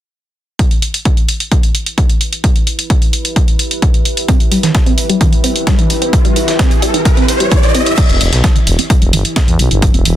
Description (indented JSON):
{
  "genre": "driving peak-time techno",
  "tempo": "130 BPM",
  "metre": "4/4",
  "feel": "straight",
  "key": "E minor",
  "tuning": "A4 = 438 Hz",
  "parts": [
    { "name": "electronic kick drum", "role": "drums", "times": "0.6-9.9 s", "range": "none", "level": "-12 LUFS", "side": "equal", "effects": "none" },
    { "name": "techno drum kit", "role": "drums", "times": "0.6-10.1 s", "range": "crash cymbal, hi-hat", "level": "-18 LUFS", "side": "equal", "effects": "none" },
    { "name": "deep dark ambient pad", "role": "texture", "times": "2.8-10.2 s", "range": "E4 to E5", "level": "-21 LUFS", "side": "right 1 dB", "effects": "chorus, built-in reverb, sidechain pumping" },
    { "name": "resonant blip pluck", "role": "riff", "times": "4.3-10.0 s", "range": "E3 to C4", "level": "-18 LUFS", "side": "right 1 dB", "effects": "phaser, sidechain pumping, ping-pong delay" },
    { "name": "breakbeat sampler-style drum kit", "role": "drums", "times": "4.3-10.2 s", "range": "hi-hat, snare drum", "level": "-24 LUFS", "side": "equal", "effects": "sidechain pumping on hats, high-pass filter on hats, high-pass filter on snare" },
    { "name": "riser", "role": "sound effects", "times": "5.5-8.0 s", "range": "none", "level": "-20 LUFS", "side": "left 1 dB", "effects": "none" },
    { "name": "swarming drone", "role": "drone", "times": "8.7-10.2 s", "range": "E3 to E4", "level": "-24 LUFS", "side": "right 3 dB", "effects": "built-in reverb, sidechain pumping" },
    { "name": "growling FM bass", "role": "bass", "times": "8.1-10.2 s", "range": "E1 to E2", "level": "-13 LUFS", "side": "equal", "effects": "sidechain pumping" }
  ],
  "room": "little or no reverb",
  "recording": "dense, heavily limited modern master",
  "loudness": "-10 LUFS",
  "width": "side -12 dB against mid",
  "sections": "0.6-8.0 A section; 8.0-10.2 B section",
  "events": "fade-in on ambient pad 0.6-8.0; riser 5.5-8.0",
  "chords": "0.6 Em"
}